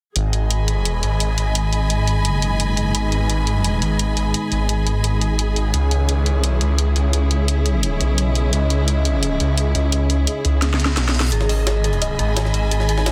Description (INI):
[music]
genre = dark technical drum and bass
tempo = 172 BPM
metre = 4/4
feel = straight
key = G# minor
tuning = A4 = 442 Hz
[part]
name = deep dark ambient pad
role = sustained chords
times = 2.1-13.1 s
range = G#3 to E5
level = -30 LUFS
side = equal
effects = chorus, built-in reverb
[part]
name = phased detuned saw bass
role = bass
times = 0.2-13.1 s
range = F#1 to C#2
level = -21 LUFS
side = equal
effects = phaser, overdrive
[part]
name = drum and bass drum kit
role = drums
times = 0.2-13.1 s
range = hi-hat, snare drum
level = -25 LUFS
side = equal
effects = none
[part]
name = warm symphonic string section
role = texture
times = 0.2-13.1 s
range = C#4 to B5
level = -28 LUFS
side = equal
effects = none
[part]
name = reverse cymbal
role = sound effects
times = 10.8-11.3 s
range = none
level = -34 LUFS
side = equal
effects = none
[part]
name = dark detuned synth bell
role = arpeggios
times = 11.3-13.1 s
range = G#4 to D#5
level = -29 LUFS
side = equal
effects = chorus, phaser, delay
[part]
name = jungle sampler-style drum kit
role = drums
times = 11.3-13.1 s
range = hi-hat, snare drum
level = -30 LUFS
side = equal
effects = high-pass filter on hats, high-pass filter on snare
[sound]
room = light reverb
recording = dense, heavily limited modern master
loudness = -19 LUFS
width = mono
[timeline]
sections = 0.2-13.1 A section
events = filter sweep on ambient pad 0.2-13.1; drum fill 10.6-11.3; reverse cymbal 10.8-11.3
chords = 0.2 G#m; 5.7 C#m; 11.3 G#m